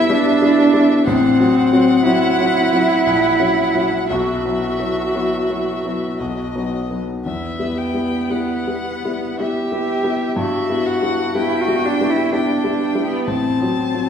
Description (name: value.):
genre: classical, slow romantic movement for piano trio.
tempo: 53-64 BPM.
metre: 3/4.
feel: rubato.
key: E minor.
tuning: A4 = 440 Hz.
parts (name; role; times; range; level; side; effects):
muted violin; melody; 0.0-14.1 s; D#5 to A5; -25 LUFS; left 2 dB; none.
muted cello; second line; 0.0-14.1 s; B3 to G4; -18 LUFS; right 1 dB; none.
warm grand piano; accompaniment; 0.0-14.1 s; A1 to F#4; -20 LUFS; left 2 dB; none.
room: wet recital hall reverb, RT60 1.9 s.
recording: heard from further back in the room.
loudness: -15 LUFS.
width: side -8 dB against mid.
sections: 0.0-14.1 A section.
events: none.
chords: 0.0 Em/G; 1.1 F#dim/A; 3.1 F#7/A#; 4.1 Bsus4; 6.2 B; 7.2 Em; 10.4 Em/G; 13.3 F#dim/A.